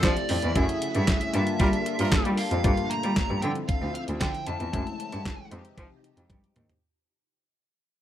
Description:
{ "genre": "early-eighties boogie funk", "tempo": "115 BPM", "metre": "4/4", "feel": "straight", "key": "G dorian", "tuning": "A4 = 440 Hz", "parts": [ { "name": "fuzz lead guitar", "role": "melody", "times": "0.0-5.5 s", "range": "D5 to Bb5", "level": "-32 LUFS", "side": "right 2 dB", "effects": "distortion" }, { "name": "mellow horn section", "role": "second line", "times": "0.0-2.3 s", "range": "D4 to Bb4", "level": "-33 LUFS", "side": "right 2 dB", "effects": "none" }, { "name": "funky polysynth comp", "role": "accompaniment", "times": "0.0-6.8 s", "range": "G#3 to A5", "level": "-33 LUFS", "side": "left 5 dB", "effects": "chorus" }, { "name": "phased string machine", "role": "sustained chords", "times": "0.0-6.8 s", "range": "Bb2 to E5", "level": "-36 LUFS", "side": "equal", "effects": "ensemble chorus, phaser" }, { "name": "rich cello", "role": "bass", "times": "0.0-6.6 s", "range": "D2 to G3", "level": "-28 LUFS", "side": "equal", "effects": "none" }, { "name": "crisp 8-bit digital drum machine", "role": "drums", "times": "0.0-6.8 s", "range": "handclaps, hi-hat, kick drum, snare drum, toms", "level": "-26 LUFS", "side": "equal", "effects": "none" } ], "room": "digital ambience", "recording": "none", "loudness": "-24 LUFS", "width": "side -11 dB against mid", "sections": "0.0-2.6 A section; 2.6-6.8 B section", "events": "fade-out 2.6-6.8; drum fill 6.3-6.8", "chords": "0.0 Fmaj7; 0.6 F#m9; 1.3 Gm9; 3.4 Dm9; 4.7 F#m9; 5.5 Fm9" }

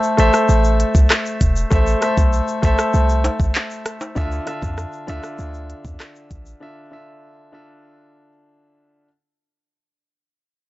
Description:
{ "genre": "dancehall", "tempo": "98 BPM", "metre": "4/4", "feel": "straight", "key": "unclear", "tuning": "A4 = 439 Hz", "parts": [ { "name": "warm concert grand piano", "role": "accompaniment", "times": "0.0-9.1 s", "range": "D3 to E5", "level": "-20 LUFS", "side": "left 1 dB", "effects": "none" }, { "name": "afro-pop drum kit", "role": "drums", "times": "0.0-6.6 s", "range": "handclaps, hi-hat, kick drum, rim click, shaker", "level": "-18 LUFS", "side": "equal", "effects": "none" }, { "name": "egg shaker and timbales", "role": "percussion", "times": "0.0-6.6 s", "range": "none", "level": "-32 LUFS", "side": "left 1 dB", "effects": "none" }, { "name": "warm 808-style bass", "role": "bass", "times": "0.2-6.5 s", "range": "E1 to F2", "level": "-18 LUFS", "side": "equal", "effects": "none" } ], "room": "little or no reverb", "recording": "dry, gritty hardware recording, cassette tape, nothing above 7.9 kHz", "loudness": "-15 LUFS", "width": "side -17 dB against mid", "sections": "0.0-9.1 A section", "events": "fade-out 0.0-9.1; break 6.6-9.1", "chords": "0.0 Am; 4.2 Dmadd9" }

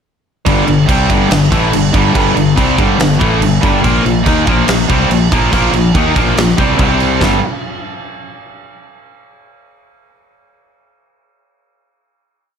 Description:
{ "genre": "hard rock", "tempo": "142 BPM", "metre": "4/4", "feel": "straight", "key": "G minor", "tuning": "A4 = 439 Hz", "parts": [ { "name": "distorted electric guitar", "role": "riff", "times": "0.5-7.4 s", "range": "G2 to Eb4", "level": "-15 LUFS", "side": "left 10 dB", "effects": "distortion" }, { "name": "tight distorted guitar", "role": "riff", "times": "0.5-7.4 s", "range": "G2 to Eb4", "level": "-15 LUFS", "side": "right 10 dB", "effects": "distortion" }, { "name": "fuzz fingered electric bass", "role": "bass", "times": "0.5-7.4 s", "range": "G1 to Eb2", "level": "-17 LUFS", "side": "equal", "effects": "overdrive" }, { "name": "big rock drum kit", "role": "drums", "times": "0.5-7.3 s", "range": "crash cymbal, kick drum, snare drum", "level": "-16 LUFS", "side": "right 1 dB", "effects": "none" } ], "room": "light reverb, studio ambience", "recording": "none", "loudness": "-10 LUFS", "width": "side -7 dB against mid", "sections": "0.5-7.2 riff; 7.2-8.9 final chord", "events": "none", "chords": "0.5 G5; 3.8 Bb5; 6.8 C5; 7.2 G5" }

